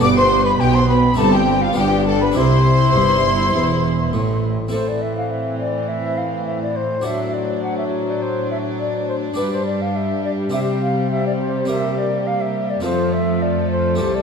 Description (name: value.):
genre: classical, baroque-style concerto movement with solo episodes.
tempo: 103 BPM.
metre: 4/4.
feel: straight.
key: C major.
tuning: A4 = 440 Hz.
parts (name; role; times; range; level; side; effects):
concert flute; melody; 0.0-14.2 s; B4 to D6; -22 LUFS; left 1 dB; none.
rich studio violin section; melody; 0.0-14.2 s; G4 to D6; -30 LUFS; left 3 dB; none.
clear chamber violin section; second line; 0.0-14.2 s; A3 to D5; -25 LUFS; left 4 dB; none.
harpsichord; accompaniment; 0.0-14.2 s; C2 to C5; -25 LUFS; left 1 dB; none.
rich chamber viola section; accompaniment; 0.0-14.2 s; E3 to E4; -24 LUFS; right 1 dB; none.
clear chamber double bass section; bass; 0.0-4.7 s; E1 to C2; -21 LUFS; right 2 dB; none.
warm chamber cello section; bass; 0.0-14.2 s; C2 to C3; -23 LUFS; right 1 dB; none.
room: wet scoring stage reverb, RT60 2.0 s.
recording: dark, warm production.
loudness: -16 LUFS.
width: side -6 dB against mid.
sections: 0.0-4.7 A section; 4.7-14.2 B section.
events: none.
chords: 0.0 G; 1.2 C/G; 1.8 G7; 2.4 C; 4.7 Am; 7.1 D7/A; 9.4 G; 10.5 C5; 12.8 F.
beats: | 0.03 0.61 1.19 1.77 | 2.36 2.95 3.54 4.13 | 4.72 5.31 5.89 6.47 | 7.05 7.64 8.22 8.80 | 9.38 9.96 10.54 11.12 | 11.70 12.27 12.85 13.42 | 14.00.